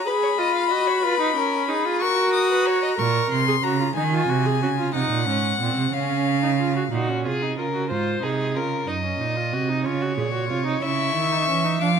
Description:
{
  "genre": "classical, baroque-style fugue for string quartet",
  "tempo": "61 BPM (dotted quarters)",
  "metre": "6/8",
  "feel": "straight",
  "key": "Eb minor",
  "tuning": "A4 = 440 Hz",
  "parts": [
    { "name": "rich violin", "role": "melody", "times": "0.0-6.9, 10.8-12.0 s", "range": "F5 to Eb6", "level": "-24 LUFS", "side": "left 8 dB", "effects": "none" },
    { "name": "rich viola", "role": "accompaniment", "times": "0.0-11.9 s", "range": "C4 to Bb4", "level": "-25 LUFS", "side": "right 2 dB", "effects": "none" },
    { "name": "warm violin", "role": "second line", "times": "0.1-2.9, 6.9-12.0 s", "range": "Gb4 to F5", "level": "-26 LUFS", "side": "left 3 dB", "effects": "none" },
    { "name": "rich cello", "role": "bass", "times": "3.0-12.0 s", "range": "Gb2 to F3", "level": "-24 LUFS", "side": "right 6 dB", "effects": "none" }
  ],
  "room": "moderate scoring stage reverb, RT60 2.0 s",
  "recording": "none",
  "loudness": "-20 LUFS",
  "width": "side -7 dB against mid",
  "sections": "0.0-6.9 A section; 6.9-12.0 B section",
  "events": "none",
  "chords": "0.1 Abm; 1.0 Fdim; 2.0 Ebm/Gb; 3.0 Bbm; 4.0 Ebm; 4.9 Cdim; 5.9 Db; 6.9 Gb/Bb; 7.9 Fm/Ab; 8.9 Ebm/Gb; 9.9 Db; 10.8 C#m"
}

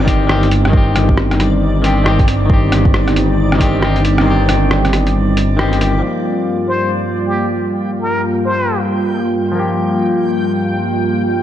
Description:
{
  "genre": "future garage",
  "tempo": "136 BPM",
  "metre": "4/4",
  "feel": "swing 62% on 16ths",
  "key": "G minor",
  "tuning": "A4 = 442 Hz",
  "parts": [
    { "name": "semi-hollow electric guitar", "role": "accompaniment", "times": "0.0-11.4 s", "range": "Eb3 to G4", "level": "-20 LUFS", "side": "left 2 dB", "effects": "sidechain pumping, low-pass filter, analog delay" },
    { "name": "airy breathy pad", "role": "sustained chords", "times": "0.0-11.4 s", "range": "G2 to F4", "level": "-18 LUFS", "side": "equal", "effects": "chorus, sidechain pumping" },
    { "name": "dark detuned saw bass", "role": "bass", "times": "0.0-6.0 s", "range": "G1", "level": "-15 LUFS", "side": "equal", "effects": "tube saturation, sidechain pumping" },
    { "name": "backwards swelling texture", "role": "texture", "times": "0.0-11.4 s", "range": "D5 to G5", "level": "-27 LUFS", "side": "right 1 dB", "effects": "built-in reverb" },
    { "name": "electronic kick drum", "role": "drums", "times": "0.1-3.7 s", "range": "none", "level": "-14 LUFS", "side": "equal", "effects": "small room ambience" },
    { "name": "lo-fi sampler-style drum kit", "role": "drums", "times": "0.1-5.9 s", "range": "hi-hat, rim click", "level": "-20 LUFS", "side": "equal", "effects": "small room ambience" },
    { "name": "trumpet with plunger mute", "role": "melody", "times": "6.7-8.8 s", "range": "G4 to C5", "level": "-20 LUFS", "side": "equal", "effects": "analog delay" }
  ],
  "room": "moderate lush hall reverb, RT60 2.1 s",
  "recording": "cassette tape",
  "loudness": "-12 LUFS",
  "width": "side -11 dB against mid",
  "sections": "0.0-6.0 A section; 6.0-11.4 B section",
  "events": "kick drops out 4.3-6.0; band accent 5.6; filter sweep on clean electric guitar 6.0-11.4",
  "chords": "0.0 Cm/G; 6.0 Gm7"
}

